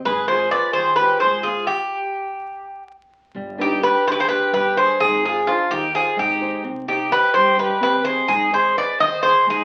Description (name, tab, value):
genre	greek folk, Greek bouzouki band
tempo	255 BPM (eighths)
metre	7/8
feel	straight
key	unclear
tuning	A4 = 440 Hz
part	nylon-string guitar	accompaniment	0.0-9.6 s	D3 to Eb5	-31 LUFS	equal	none
part	upright bass	bass	0.0-9.6 s	G1 to G2	-40 LUFS	equal	none
part	Greek bouzouki	melody	0.1-9.6 s	F4 to Eb5	-20 LUFS	equal	none
part	dark violin	second line	0.1-9.6 s	D4 to C5	-29 LUFS	equal	none
room	wet studio ambience, RT60 0.5 s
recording	very old 78 rpm record, vinyl crackle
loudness	-19 LUFS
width	mono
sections	0.0-3.4 A section; 3.4-9.6 B section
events	stop 1.7-3.4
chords	0.1 Ab6; 1.7 N.C.; 3.4 G; 5.0 Ab; 6.7 Cm; 8.3 Ab